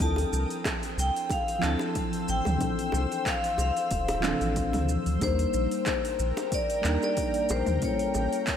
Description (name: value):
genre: sunset chillout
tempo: 92 BPM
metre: 4/4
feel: swing 54% on 16ths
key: D minor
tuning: A4 = 440 Hz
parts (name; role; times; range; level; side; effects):
- vibraphone with hard mallets; melody; 0.0-8.6 s; C5 to A5; -30 LUFS; left 2 dB; ping-pong delay, slapback echo
- mellow FM electric piano; accompaniment; 0.0-8.6 s; E3 to Bb4; -31 LUFS; moving between left 5 dB and right 4 dB; chorus, phaser, auto-pan, tape echo, slapback echo
- shimmering ambient pad; sustained chords; 0.0-8.6 s; Bb3 to E6; -37 LUFS; left 1 dB; chorus, built-in reverb
- warm sub bass; bass; 0.0-8.3 s; D1 to Eb2; -28 LUFS; equal; none
- deep house drum kit; drums; 0.0-8.6 s; handclaps, hi-hat, shaker, toms; -34 LUFS; right 1 dB; overdrive, small room ambience
- electronic kick drum; drums; 0.0-8.6 s; none; -34 LUFS; equal; overdrive, small room ambience
- bongos; percussion; 0.2-8.3 s; none; -39 LUFS; equal; none
room: moderate lush hall reverb, RT60 2.5 s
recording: big arena sound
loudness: -25 LUFS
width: side -8 dB against mid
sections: 0.0-8.6 A section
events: none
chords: 0.0 Dm9; 5.2 Ebmaj7; 7.8 A7b9